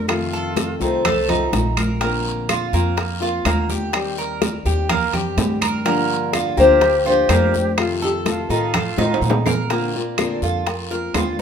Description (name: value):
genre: latin, Cuban son and guajira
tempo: 125 BPM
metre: 4/4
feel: straight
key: Bb major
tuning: A4 = 440 Hz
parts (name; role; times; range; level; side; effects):
- nylon-string guitar; melody; 0.0-1.5, 6.6-11.4 s; G4 to D5; -18 LUFS; left 3 dB; none
- reedy jazz flute; second line; 0.0-1.5, 6.6-9.4 s; Eb4 to A4; -27 LUFS; right 4 dB; none
- nylon-string guitar; accompaniment; 0.0-11.4 s; C3 to G4; -25 LUFS; left 5 dB; none
- upright bass; bass; 0.0-11.4 s; Bb1 to Bb2; -25 LUFS; equal; none
- bongos; percussion; 0.1-11.4 s; none; -27 LUFS; left 6 dB; none
- claves; percussion; 0.1-11.4 s; none; -32 LUFS; left 6 dB; none
- congas; percussion; 0.1-11.4 s; none; -26 LUFS; equal; none
- guiro; percussion; 0.1-11.4 s; none; -34 LUFS; left 7 dB; none
- timbales; percussion; 0.1-11.4 s; none; -26 LUFS; right 5 dB; none
- Cuban tres; arpeggios; 0.3-11.4 s; A3 to Bb4; -24 LUFS; right 7 dB; none
room: moderate large studio reverb, RT60 0.9 s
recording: minimal, uncompressed stereo recording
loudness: -17 LUFS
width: side -7 dB against mid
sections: 0.0-9.7 A section; 9.7-11.4 B section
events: drum fill 9.0-9.7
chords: 0.1 F7; 2.0 Bbadd9; 3.9 Eb6; 5.9 Gm7; 7.8 F7; 9.7 Bbadd9